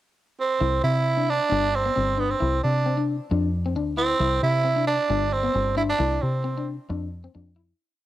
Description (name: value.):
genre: highlife guitar band.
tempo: 134 BPM.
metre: 4/4.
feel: swing 54% on 16ths.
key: C major.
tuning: A4 = 441 Hz.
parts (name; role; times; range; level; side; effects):
raspy tenor saxophone; melody; 0.4-6.7 s; B3 to E4; -23 LUFS; right 4 dB; cassette tape.
clean electric guitar; accompaniment; 0.6-7.7 s; B3 to E4; -29 LUFS; left 6 dB; cassette tape.
deep dub fingered electric bass; bass; 0.6-7.7 s; G1 to C3; -26 LUFS; left 1 dB; none.
room: light reverb, small room ambience.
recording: home recording on cassette.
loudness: -21 LUFS.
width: side -14 dB against mid.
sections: 0.0-0.6 pickup bar; 0.6-7.8 A section.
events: fade-out 6.0-7.8.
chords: 0.0 N.C.; 0.6 Cadd9; 1.5 G5; 2.4 Cadd9; 3.3 F5; 4.2 Cadd9; 5.1 G5; 6.0 Cadd9; 6.9 F5.